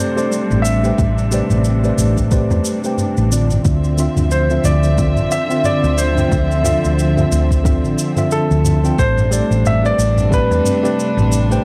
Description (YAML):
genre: sunset chillout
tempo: 90 BPM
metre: 4/4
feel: swing 57% on 16ths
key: A minor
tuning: A4 = 440 Hz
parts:
  - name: clear grand piano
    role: melody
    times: 0.0-11.6 s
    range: A4 to E5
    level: -24 LUFS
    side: equal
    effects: analog delay
  - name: mellow tine electric piano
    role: accompaniment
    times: 0.0-11.6 s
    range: D3 to G5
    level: -22 LUFS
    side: equal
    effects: analog delay
  - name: dark studio string section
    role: sustained chords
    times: 0.0-11.6 s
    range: C3 to E5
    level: -24 LUFS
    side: equal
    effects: none
  - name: electronic shaker and toms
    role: drums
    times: 0.2-11.6 s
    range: none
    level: -26 LUFS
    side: equal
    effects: none
  - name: hollow-body short-scale fingered electric bass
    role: bass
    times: 0.5-11.6 s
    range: A1 to E2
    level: -19 LUFS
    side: equal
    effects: none
  - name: electronic kick drum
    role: drums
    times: 1.0-10.5 s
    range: none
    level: -20 LUFS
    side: equal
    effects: none
room: digital ambience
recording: dry, gritty hardware recording, transformer saturation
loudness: -16 LUFS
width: mono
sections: 0.0-11.6 A section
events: none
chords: 0.0 Am11; 3.7 Dm9; 9.0 Am11